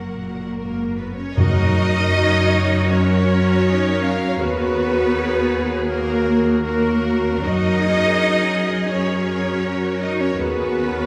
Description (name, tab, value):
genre	cinematic, emotional film score for orchestra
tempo	80 BPM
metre	4/4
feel	rubato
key	F# major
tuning	A4 = 440 Hz
part	clear cello	melody	0.0-0.5 s	A#3	-40 LUFS	equal	none
part	rich symphonic violin section	melody	0.0-11.1 s	A#4 to F#5	-31 LUFS	equal	none
part	warm symphonic violin section	second line	0.0-11.1 s	A#4 to D#5	-32 LUFS	equal	none
part	clear studio viola section	accompaniment	0.0-11.1 s	D#4 to E#5	-30 LUFS	equal	none
part	bright studio double bass section	bass	0.0-11.1 s	F#1 to F#2	-24 LUFS	equal	none
part	rich symphonic cello section	bass	0.0-11.1 s	F#2 to D#4	-26 LUFS	equal	none
part	hollow concert flute	second line	0.6-11.1 s	A#4 to D#5	-30 LUFS	equal	none
part	dark cor anglais	second line	1.4-11.1 s	A#4	-34 LUFS	equal	none
part	warm clarinet	second line	1.4-11.1 s	F#4	-31 LUFS	equal	none
part	mellow French horn section	sustained chords	1.4-11.1 s	F#4 to C#5	-30 LUFS	equal	none
part	timpani	percussion	1.4-2.5 s	F#2	-23 LUFS	equal	none
room	wet scoring stage reverb, RT60 2.1 s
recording	heard from further back in the room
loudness	-19 LUFS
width	mono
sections	0.0-1.4 A section; 1.4-11.1 B section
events	none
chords	0.0 F#; 4.4 D#m; 7.4 F#; 10.4 D#m